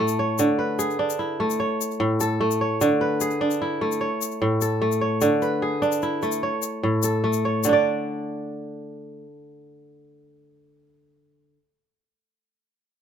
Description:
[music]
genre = west african traditional, West African string and xylophone music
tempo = 99 BPM (dotted quarters)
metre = 12/8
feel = straight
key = unclear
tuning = A4 = 440 Hz
[part]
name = kora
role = arpeggios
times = 0.0-11.6 s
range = A2 to D5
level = -21 LUFS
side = right 1 dB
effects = none
[part]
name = egg shaker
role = percussion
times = 0.1-7.8 s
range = none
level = -30 LUFS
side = left 15 dB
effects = none
[sound]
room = moderate small room reverb, RT60 0.5 s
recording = minimal, uncompressed stereo recording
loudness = -21 LUFS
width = side -8 dB against mid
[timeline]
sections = 0.0-7.6 A section; 7.6-10.1 B section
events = none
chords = 0.4 D5; 1.6 A; 2.8 D5; 4.0 A; 5.2 D5; 6.4 A; 7.6 N.C.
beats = | 0.39 0.99 1.59 2.20 | 2.80 3.41 4.01 4.62 | 5.22 5.83 6.43 7.03 | 7.64 8.24 8.85 9.45

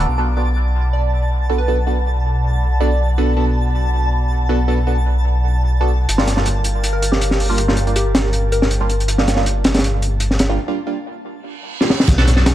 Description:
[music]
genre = drum and bass, jungle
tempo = 160 BPM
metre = 4/4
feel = straight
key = B minor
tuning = A4 = 440 Hz
[part]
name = warbly tape-like pad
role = sustained chords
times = 0.0-12.5 s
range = Bb4 to B5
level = -28 LUFS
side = equal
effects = chorus, built-in reverb, vintage 12-bit sampler grit
[part]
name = band-passed chord stab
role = stabs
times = 0.0-12.5 s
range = G3 to A4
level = -24 LUFS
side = right 2 dB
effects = phaser, wide subtle chorus, dub echo
[part]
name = dark detuned saw bass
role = bass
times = 0.0-12.5 s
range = G1 to B1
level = -17 LUFS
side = equal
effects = none
[part]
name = twinkling granular texture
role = texture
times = 0.0-12.5 s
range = A5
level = -30 LUFS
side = equal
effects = built-in reverb
[part]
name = plucky unison lead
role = melody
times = 0.9-3.1, 6.9-8.7 s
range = G4 to D5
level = -26 LUFS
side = right 1 dB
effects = dub echo
[part]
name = crunchy breakbeat drum kit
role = drums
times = 6.1-12.5 s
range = crash cymbal, hi-hat, kick drum, snare drum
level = -18 LUFS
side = equal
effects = none
[part]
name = reverse cymbal and sub drop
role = sound effects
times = 11.5-12.5 s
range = none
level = -26 LUFS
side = right 2 dB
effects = none
[sound]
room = studio reverb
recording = dark, warm production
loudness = -15 LUFS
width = side -13 dB against mid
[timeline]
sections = 0.1-12.1 A section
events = break 10.6-12.1; reverse cymbal 11.5-12.1; drum fill 11.8; impact 12.1-12.5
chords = 0.1 Bm7; 6.1 Gm7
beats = | 0.08 0.46 0.83 1.21 | 1.58 1.96 2.33 2.71 | 3.08 3.46 3.83 4.21 | 4.58 4.96 5.33 5.71 | 6.08 6.46 6.83 7.21 | 7.58 7.96 8.33 8.71 | 9.08 9.46 9.83 10.21 | 10.58 10.96 11.33 11.71 | 12.08 12.46

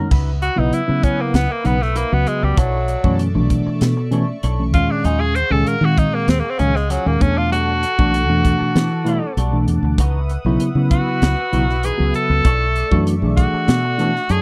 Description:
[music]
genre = electric jazz fusion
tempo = 97 BPM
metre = 4/4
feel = straight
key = unclear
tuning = A4 = 439 Hz
[part]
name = mellow tine electric piano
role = accompaniment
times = 0.0-14.2 s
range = A#2 to G#4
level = -22 LUFS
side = equal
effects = none
[part]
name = clean electric guitar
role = stabs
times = 0.0-14.4 s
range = E3 to E5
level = -33 LUFS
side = equal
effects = analog chorus
[part]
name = analog string pad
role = sustained chords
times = 0.1-14.4 s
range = A3 to D#6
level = -34 LUFS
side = equal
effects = ensemble chorus
[part]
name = fingered electric bass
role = bass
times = 0.1-14.4 s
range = B1 to E3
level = -21 LUFS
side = equal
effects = none
[part]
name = crisp fusion drum kit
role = drums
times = 0.1-14.4 s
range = crash cymbal, hi-hat, kick drum, snare drum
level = -21 LUFS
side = equal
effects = none
[part]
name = bright tenor saxophone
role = melody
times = 0.4-14.4 s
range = F#3 to B#4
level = -23 LUFS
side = equal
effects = none
[sound]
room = little or no reverb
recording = dry, close 1970s-style studio recording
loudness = -18 LUFS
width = mono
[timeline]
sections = 0.1-14.4 A section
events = tenor saxophone solo 0.1-14.4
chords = 0.1 C#m11; 2.6 Bm11; 4.7 D#m11; 7.2 Em11; 10.0 C#m11; 12.4 Bm11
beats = | 0.12 0.73 1.35 1.96 | 2.58 3.20 3.81 4.43 | 5.05 5.66 6.28 6.90 | 7.52 8.13 8.75 9.37 | 9.98 10.60 11.22 11.83 | 12.45 13.06 13.68 14.29

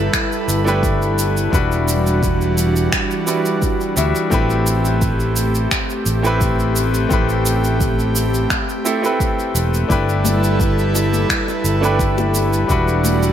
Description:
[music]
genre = sunset chillout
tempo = 86 BPM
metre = 4/4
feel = straight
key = unclear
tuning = A4 = 440 Hz
[part]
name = clear baby grand piano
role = accompaniment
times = 0.0-13.3 s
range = G3 to E5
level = -21 LUFS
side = moving between left 4 dB and right 4 dB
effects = auto-pan, digital delay, shimmer reverb
[part]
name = airy breathy pad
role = sustained chords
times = 0.0-13.3 s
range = E3 to B4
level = -21 LUFS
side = equal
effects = chorus, shimmer reverb
[part]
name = fretless electric bass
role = bass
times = 0.0-13.3 s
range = E1 to D2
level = -19 LUFS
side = equal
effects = none
[part]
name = electronic finger snaps and cabasa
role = drums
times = 0.1-13.3 s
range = none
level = -23 LUFS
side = right 2 dB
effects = gated reverb
[part]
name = electronic kick drum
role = drums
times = 0.1-12.8 s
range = none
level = -21 LUFS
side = equal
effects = none
[part]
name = bongos and congas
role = percussion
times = 10.2-13.2 s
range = none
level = -26 LUFS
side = left 7 dB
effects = none
[sound]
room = light reverb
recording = bright 1980s-style digital production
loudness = -15 LUFS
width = side -10 dB against mid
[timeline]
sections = 0.0-13.3 A section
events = none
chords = 0.0 G69; 1.5 Em9; 4.3 Am9; 9.9 G69; 12.7 Em9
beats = 0.14 0.83 | 1.53 2.23 2.93 3.62 | 4.32 5.02 5.72 6.41 | 7.11 7.81 8.51 9.21 | 9.90 10.60 11.30 12.00 | 12.69

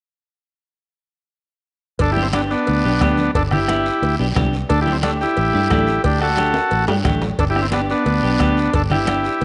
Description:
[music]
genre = latin, cumbia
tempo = 178 BPM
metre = 4/4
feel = straight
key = G major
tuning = A4 = 440 Hz
[part]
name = combo organ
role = melody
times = 2.0-9.4 s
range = A3 to A4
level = -21 LUFS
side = equal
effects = none
[part]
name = fingered electric bass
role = bass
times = 2.0-9.4 s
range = G1 to G2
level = -24 LUFS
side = equal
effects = none
[part]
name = bombo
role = percussion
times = 2.0-9.2 s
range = none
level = -27 LUFS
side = equal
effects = none
[part]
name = congas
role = percussion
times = 2.0-9.2 s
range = none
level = -29 LUFS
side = equal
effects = none
[part]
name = cowbell and timbales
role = percussion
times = 2.0-9.4 s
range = none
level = -32 LUFS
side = equal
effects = none
[part]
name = guiro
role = percussion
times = 2.0-9.4 s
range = none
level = -36 LUFS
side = equal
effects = none
[part]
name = clean electric guitar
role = accompaniment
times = 2.2-9.2 s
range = A3 to A4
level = -27 LUFS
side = equal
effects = none
[sound]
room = moderate echo chamber reverb, RT60 1.8 s, small room ambience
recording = nothing above 10.5 kHz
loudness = -18 LUFS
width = mono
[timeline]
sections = 2.0-9.4 A section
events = drum fill 6.5-7.4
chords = 2.0 G; 4.7 Dsus4; 7.4 G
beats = | 2.00 2.34 2.68 3.01 | 3.35 3.69 4.02 4.36 | 4.70 5.03 5.37 5.71 | 6.04 6.38 6.72 7.05 | 7.39 7.73 8.07 8.40 | 8.74 9.08 9.41

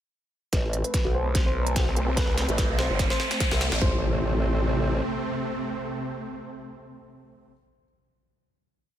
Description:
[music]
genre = heavy wobble dubstep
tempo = 146 BPM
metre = 4/4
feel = swing 54% on 16ths, half-time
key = A minor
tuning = A4 = 440 Hz
[part]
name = clear baby grand piano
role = melody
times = 0.5-7.5 s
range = B4 to C5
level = -34 LUFS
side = equal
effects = low-pass filter, ping-pong delay
[part]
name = supersaw chords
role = sustained chords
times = 0.5-7.5 s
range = C3 to C4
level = -31 LUFS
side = right 1 dB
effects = sidechain pumping
[part]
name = formant-sweep wobble bass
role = bass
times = 0.5-5.0 s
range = G1 to C2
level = -26 LUFS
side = equal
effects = chorus, overdrive
[part]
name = dubstep drum kit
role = drums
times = 0.5-3.8 s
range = hi-hat, snare drum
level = -31 LUFS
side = right 1 dB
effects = high-pass filter on snare, high-pass filter on hats
[part]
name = electronic kick drum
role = drums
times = 0.5-3.9 s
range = none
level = -26 LUFS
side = equal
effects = overdrive
[part]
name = riser and impact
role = sound effects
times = 1.3-7.6 s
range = none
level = -33 LUFS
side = equal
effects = none
[part]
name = vowel-sweep wobble bass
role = bass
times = 1.0-2.5 s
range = B1 to C2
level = -26 LUFS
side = equal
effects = chorus, overdrive
[sound]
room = little or no reverb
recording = none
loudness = -23 LUFS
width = side -11 dB against mid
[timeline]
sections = 0.5-3.8 build; 3.8-7.1 final chord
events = build-up 0.5-3.8; drum fill 0.5-3.8; filter sweep on grand piano 0.5-3.8; riser 1.3-3.8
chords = 0.5 Amadd9; 3.8 Am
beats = | 0.53 0.94 1.35 1.76 | 2.17 2.58 2.99 3.40 | 3.82 4.23 4.64 5.05 | 5.46 5.87 6.28 6.69

